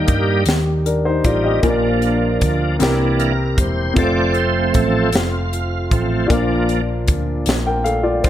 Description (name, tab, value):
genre	slow gospel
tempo	51 BPM (dotted quarters)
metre	6/8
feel	straight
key	Bb major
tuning	A4 = 440 Hz
part	warm upright piano	accompaniment	0.0-8.3 s	Bb2 to G5	-20 LUFS	left 2 dB	none
part	bright tonewheel organ	sustained chords	0.0-8.3 s	E3 to D5	-20 LUFS	right 3 dB	slow rotary speaker, overdrive, chorus vibrato
part	dark French horn section	sustained chords	0.0-8.3 s	F3 to G4	-28 LUFS	right 1 dB	none
part	hollow-body short-scale fingered electric bass	bass	0.0-8.3 s	E1 to G2	-21 LUFS	equal	none
part	crisp fusion drum kit	drums	0.1-8.3 s	hi-hat, kick drum, snare drum	-20 LUFS	equal	none
room	light reverb, small room ambience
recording	none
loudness	-15 LUFS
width	side -12 dB against mid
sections	0.0-8.3 A section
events	tonewheel organ solo 0.0-8.3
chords	0.0 Eb; 1.6 Bb; 2.8 C7; 4.0 F; 6.3 Bb